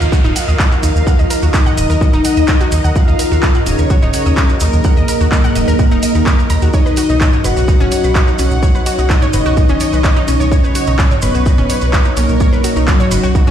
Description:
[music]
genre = melodic techno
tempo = 127 BPM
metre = 4/4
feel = straight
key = Eb minor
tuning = A4 = 440 Hz
[part]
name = soft octave-layered synth lead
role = melody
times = 0.0-13.5 s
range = F#3 to F#4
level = -18 LUFS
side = left 2 dB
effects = chorus, phaser, cassette tape, sidechain pumping, ping-pong delay
[part]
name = soft supersaw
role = second line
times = 0.0-13.5 s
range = F#4 to F#5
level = -24 LUFS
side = right 2 dB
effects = sidechain pumping, ping-pong delay
[part]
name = dark analog pad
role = sustained chords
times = 0.0-13.5 s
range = Gb3 to D#5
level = -25 LUFS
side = right 1 dB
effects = chorus, phaser, sidechain pumping
[part]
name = analog pluck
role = arpeggios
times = 0.0-13.5 s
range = C#4 to Bb5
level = -23 LUFS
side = equal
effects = chorus, sidechain pumping, ping-pong delay
[part]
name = round analog bass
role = bass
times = 0.0-13.5 s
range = Eb1 to Eb2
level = -15 LUFS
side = equal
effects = sidechain pumping
[part]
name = maracas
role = percussion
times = 0.0-13.5 s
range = none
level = -28 LUFS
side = right 4 dB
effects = none
[part]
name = downlifter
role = sound effects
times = 0.0-3.0 s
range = none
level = -29 LUFS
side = equal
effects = none
[part]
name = ethereal airy pad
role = texture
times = 0.0-13.5 s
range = D#4 to C#6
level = -24 LUFS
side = right 2 dB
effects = ensemble chorus, built-in reverb, sidechain pumping
[part]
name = electronic kick drum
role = drums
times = 0.1-13.4 s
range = none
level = -13 LUFS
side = equal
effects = overdrive
[part]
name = house drum kit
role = drums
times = 0.2-13.4 s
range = handclaps, hi-hat, toms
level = -20 LUFS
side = equal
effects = overdrive
[sound]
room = little or no reverb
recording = played on a big sound system in a bare room, stone room reverb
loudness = -10 LUFS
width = side -10 dB against mid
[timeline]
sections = 0.0-13.5 A section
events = none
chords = 0.0 Ebm; 6.7 Badd9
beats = 0.12 0.59 | 1.07 1.54 2.01 2.48 | 2.96 3.43 3.90 4.37 | 4.85 5.32 5.79 6.26 | 6.74 7.21 7.68 8.15 | 8.63 9.10 9.57 10.04 | 10.52 10.99 11.46 11.93 | 12.40 12.88 13.35

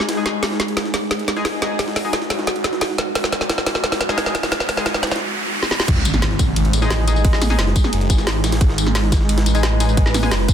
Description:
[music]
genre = dark technical drum and bass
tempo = 176 BPM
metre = 4/4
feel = straight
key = G# phrygian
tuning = A4 = 439 Hz
[part]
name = swarming drone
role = sustained chords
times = 0.0-10.5 s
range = G#3 to B4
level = -25 LUFS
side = right 1 dB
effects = built-in reverb, sidechain pumping
[part]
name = drum and bass drum kit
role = drums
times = 0.0-10.5 s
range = crash cymbal, hi-hat, snare drum, tambourine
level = -21 LUFS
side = equal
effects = soft clipping on snare
[part]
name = jungle sampler-style drum kit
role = drums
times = 0.0-10.5 s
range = hi-hat, ride cymbal, snare drum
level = -29 LUFS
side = equal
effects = high-pass filter on cymbals, high-pass filter on snare, high-pass filter on hats
[part]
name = phased detuned saw bass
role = bass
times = 0.1-10.5 s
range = F#1 to D#2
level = -21 LUFS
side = equal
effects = phaser, tube saturation, sidechain pumping, high-pass filter
[part]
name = band-passed chord stab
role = stabs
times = 0.2-10.3 s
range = G#3 to G#4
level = -26 LUFS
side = left 3 dB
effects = chorus, dub echo
[part]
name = riser and impact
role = sound effects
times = 2.3-7.2 s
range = none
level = -26 LUFS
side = right 1 dB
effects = none
[part]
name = electronic kick drum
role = drums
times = 5.9-10.5 s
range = none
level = -16 LUFS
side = equal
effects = overdrive
[sound]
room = light reverb, digital ambience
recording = dense, heavily limited modern master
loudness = -16 LUFS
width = side -9 dB against mid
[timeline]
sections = 0.0-5.9 A section; 5.9-10.5 B section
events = build-up 0.0-5.9; drum fill 0.0-5.2, 5.6; riser 2.3-5.9; drop 5.9-10.5; impact 5.9-7.2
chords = 0.0 G#5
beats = 0.09 | 0.43 0.77 1.11 1.45 | 1.79 2.13 2.47 2.81 | 3.15 3.50 3.84 4.18 | 4.52 4.86 5.20 5.54 | 5.88 6.22 6.56 6.91 | 7.25 7.59 7.93 8.27 | 8.61 8.95 9.29 9.63 | 9.97 10.31

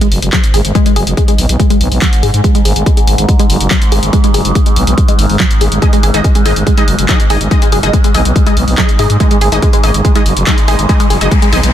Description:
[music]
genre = driving peak-time techno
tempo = 142 BPM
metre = 4/4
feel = straight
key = G# minor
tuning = A4 = 439 Hz
[part]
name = tight sequenced synth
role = riff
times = 0.0-11.5 s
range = F#3 to G#4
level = -17 LUFS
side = equal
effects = chorus, phaser, vintage 12-bit sampler grit, sidechain pumping, ping-pong delay
[part]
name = overtone-sweeping drone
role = drone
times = 0.0-11.7 s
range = G#2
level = -20 LUFS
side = right 1 dB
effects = chorus, built-in reverb, sidechain pumping
[part]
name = punchy analog drum machine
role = drums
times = 0.0-11.7 s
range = handclaps, hi-hat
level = -18 LUFS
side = left 1 dB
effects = sidechain pumping on hats
[part]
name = growling FM bass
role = bass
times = 0.1-11.7 s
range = F#1 to G#2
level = -13 LUFS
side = equal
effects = sidechain pumping
[part]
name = electronic kick drum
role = drums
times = 0.3-11.4 s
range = none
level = -11 LUFS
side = equal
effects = none
[part]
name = rave stab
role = stabs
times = 5.8-11.6 s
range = D#4 to D#5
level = -18 LUFS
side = left 2 dB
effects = chorus, built-in reverb, phaser, sidechain pumping, ping-pong delay
[part]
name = riser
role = sound effects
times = 10.1-11.7 s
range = none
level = -25 LUFS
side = left 1 dB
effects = none
[sound]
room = digital ambience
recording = dense, heavily limited modern master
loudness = -8 LUFS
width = side -11 dB against mid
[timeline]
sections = 0.0-11.7 A section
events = riser 10.1-11.7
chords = 0.0 G#5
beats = 0.33 | 0.75 1.17 1.60 2.02 | 2.44 2.86 3.29 3.71 | 4.13 4.55 4.98 5.40 | 5.82 6.24 6.67 7.09 | 7.51 7.93 8.36 8.78 | 9.20 9.62 10.05 10.47 | 10.89 11.31

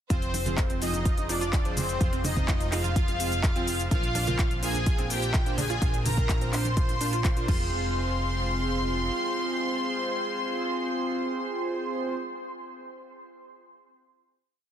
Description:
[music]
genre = progressive house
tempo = 126 BPM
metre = 4/4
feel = straight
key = F dorian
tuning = A4 = 438 Hz
[part]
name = soft supersaw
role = melody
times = 0.1-12.1 s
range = C4 to C6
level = -33 LUFS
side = left 1 dB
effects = phaser, dub echo
[part]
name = warm symphonic violin section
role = second line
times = 0.1-12.1 s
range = C5 to C6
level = -37 LUFS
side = left 2 dB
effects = sidechain pumping, dub echo
[part]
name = supersaw pad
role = sustained chords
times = 0.1-12.1 s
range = F3 to F5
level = -40 LUFS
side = left 1 dB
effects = sidechain pumping
[part]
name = analog pluck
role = arpeggios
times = 0.1-7.9 s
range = C4 to F4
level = -38 LUFS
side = right 7 dB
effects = chorus, sidechain pumping, dub echo
[part]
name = chorused polysynth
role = stabs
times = 0.1-12.1 s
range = Bb2 to C5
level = -33 LUFS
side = right 2 dB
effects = sidechain pumping, dub echo
[part]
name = plucky analog bass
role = bass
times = 0.1-9.1 s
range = F1 to Bb1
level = -31 LUFS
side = equal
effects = sidechain pumping
[part]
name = electronic kick drum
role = drums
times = 0.1-7.6 s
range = none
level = -26 LUFS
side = equal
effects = none
[part]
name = pop drum kit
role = drums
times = 0.1-7.6 s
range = crash cymbal, handclaps, hi-hat, shaker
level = -34 LUFS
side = left 2 dB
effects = sidechain pumping on hats, sidechain pumping on perc, sidechain pumping on cymbals
[part]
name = congas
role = percussion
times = 0.3-7.0 s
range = none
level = -35 LUFS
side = right 2 dB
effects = sidechain pumping on perc
[sound]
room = light reverb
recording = dense, heavily limited modern master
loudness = -25 LUFS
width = side -10 dB against mid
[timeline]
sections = 0.1-7.7 drop; 7.7-11.5 final hit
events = drop 0.1-7.7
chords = 0.1 Fm; 3.9 Bbadd9; 7.5 Fm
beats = | 0.10 0.58 1.06 1.53 | 2.01 2.48 2.96 3.44 | 3.91 4.39 4.87 5.34 | 5.82 6.29 6.77 7.25 | 7.72 8.20 8.68 9.15 | 9.63 10.10 10.58 11.06

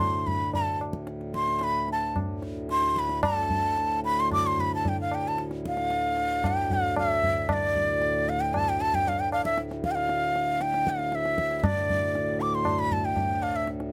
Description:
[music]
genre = indian classical, Hindustani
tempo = 109-119 BPM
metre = 4/4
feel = straight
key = D raga kafi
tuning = A4 = 440 Hz
[part]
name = breathy bright bansuri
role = melody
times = 0.0-13.7 s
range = D5 to D6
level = -28 LUFS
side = equal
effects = none
[part]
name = hand-pumped harmonium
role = drone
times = 0.0-13.9 s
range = D2 to A2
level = -35 LUFS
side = equal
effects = none
[part]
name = tabla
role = percussion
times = 0.3-13.9 s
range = none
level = -33 LUFS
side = equal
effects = none
[sound]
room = light reverb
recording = close, detailed microphones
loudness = -27 LUFS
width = mono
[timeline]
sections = 0.0-3.2 A section; 3.2-13.9 B section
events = speeding up 0.0-13.9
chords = none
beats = 0.52 | 1.07 1.61 2.16 2.70 | 3.24 3.78 4.31 4.85 | 5.38 5.91 6.44 6.97 | 7.49 8.02 8.54 9.06 | 9.58 10.10 10.62 11.13 | 11.64 12.15 12.66 13.17 | 13.68

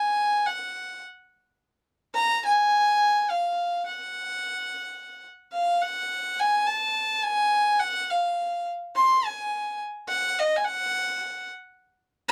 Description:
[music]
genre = mexican folk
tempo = free time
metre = none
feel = none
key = F# major, F# harmonic minor from 5.6 s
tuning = A4 = 440 Hz
[part]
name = warm violin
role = solo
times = 0.0-12.3 s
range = D#5 to B#5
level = -26 LUFS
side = equal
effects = none
[sound]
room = little or no reverb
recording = close, detailed microphones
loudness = -25 LUFS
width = mono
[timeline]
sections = 0.0-5.6 A section; 5.6-12.3 B section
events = none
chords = none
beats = free time

